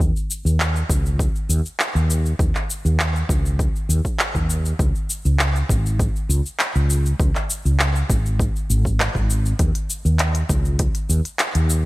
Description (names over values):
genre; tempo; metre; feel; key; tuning
organic downtempo; 100 BPM; 4/4; straight; unclear; A4 = 444 Hz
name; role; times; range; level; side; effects
woody fretless electric bass; bass; 0.0-11.9 s; Ab1 to Eb2; -18 LUFS; equal; ensemble chorus, sidechain pumping
afro-pop drum kit; drums; 0.0-11.8 s; handclaps, hi-hat, shaker; -24 LUFS; equal; none
electronic kick drum; drums; 0.0-10.9 s; none; -22 LUFS; equal; overdrive
room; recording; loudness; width
little or no reverb; none; -18 LUFS; side -19 dB against mid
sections
0.0-11.9 A section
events
none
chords
none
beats
0.59 1.19 1.79 | 2.39 2.99 3.59 4.19 | 4.79 5.39 5.99 6.59 | 7.19 7.79 8.39 8.99 | 9.59 10.19 10.79 11.39